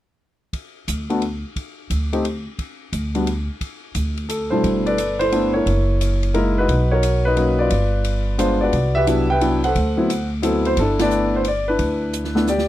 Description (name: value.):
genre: jazz piano trio.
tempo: 176 BPM.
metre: 3/4.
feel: swing 65% on 8ths.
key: G major.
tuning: A4 = 440 Hz.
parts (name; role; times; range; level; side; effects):
open jazz drum kit; drums; 0.5-12.7 s; hi-hat, kick drum, ride cymbal, snare drum; -30 LUFS; equal; none.
upright bass; bass; 0.9-12.7 s; F#1 to D2; -22 LUFS; equal; none.
warm grand piano; melody; 1.1-12.7 s; G2 to G5; -19 LUFS; left 1 dB; none.
room: little or no reverb.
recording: dry, close 1970s-style studio recording.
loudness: -17 LUFS.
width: side -14 dB against mid.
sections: 0.5-4.6 A section; 4.6-12.7 B section.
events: band accent 10.9; drum fill 12.1-12.7.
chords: 0.5 N.C.; 4.6 G69; 5.7 F#13; 6.7 Bmaj9; 7.7 G7b9; 8.7 Cmaj9#11; 9.8 D13; 10.8 G69.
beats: | 0.53 0.87 1.22 | 1.56 1.90 2.24 | 2.59 2.93 3.27 | 3.61 3.95 4.29 | 4.63 4.98 5.32 | 5.66 6.00 6.34 | 6.68 7.02 7.36 | 7.71 8.05 8.39 | 8.73 9.07 9.41 | 9.75 10.09 10.43 | 10.78 11.12 11.46 | 11.80 12.14 12.48.